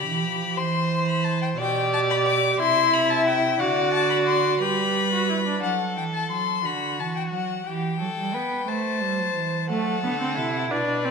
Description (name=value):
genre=classical, baroque-style fugue for string quartet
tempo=59 BPM (dotted quarters)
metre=6/8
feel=straight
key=unclear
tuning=A4 = 437 Hz
part: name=rich violin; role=melody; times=0.0-11.1 s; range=D5 to D6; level=-25 LUFS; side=left 8 dB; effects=none
part: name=warm violin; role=second line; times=0.0-11.1 s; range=F#4 to E5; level=-28 LUFS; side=left 3 dB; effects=none
part: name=warm cello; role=bass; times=0.1-11.1 s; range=B2 to B3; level=-28 LUFS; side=right 6 dB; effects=none
part: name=rich viola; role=accompaniment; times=1.6-5.6, 9.7-11.1 s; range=A3 to G4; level=-25 LUFS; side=right 4 dB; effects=none
room=wet recital hall reverb, RT60 1.5 s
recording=none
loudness=-21 LUFS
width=side -5 dB against mid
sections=0.0-5.6 A section; 5.6-11.1 B section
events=none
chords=0.0 G7; 0.6 C/E; 1.6 G/B; 2.6 C; 3.6 D7; 4.6 G; 5.6 F#dim; 6.7 Bm/D; 7.7 Em; 8.7 Am7; 9.7 F#dim